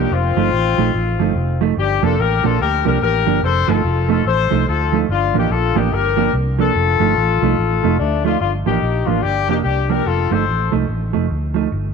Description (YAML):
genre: ska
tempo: 145 BPM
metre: 4/4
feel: swing 62% on 8ths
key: unclear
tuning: A4 = 440 Hz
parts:
  - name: mellow horn section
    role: melody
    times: 0.0-10.7 s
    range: A3 to C5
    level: -19 LUFS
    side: left 11 dB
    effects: none
  - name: mellow electric guitar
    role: accompaniment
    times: 0.0-11.7 s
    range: F3 to Eb4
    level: -20 LUFS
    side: right 13 dB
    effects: spring reverb
  - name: vintage muted fingered electric bass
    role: bass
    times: 0.0-11.9 s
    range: F1 to D2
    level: -20 LUFS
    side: equal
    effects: none
room: light reverb, small room ambience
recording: 1960s-style stereo with parts hard left and right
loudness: -15 LUFS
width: side -5 dB against mid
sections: 0.0-8.4 A section; 8.4-11.9 B section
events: none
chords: 0.1 F7; 1.8 Gm7; 3.4 F7; 5.1 Gm7; 6.7 F7; 8.4 Gm7; 10.1 F7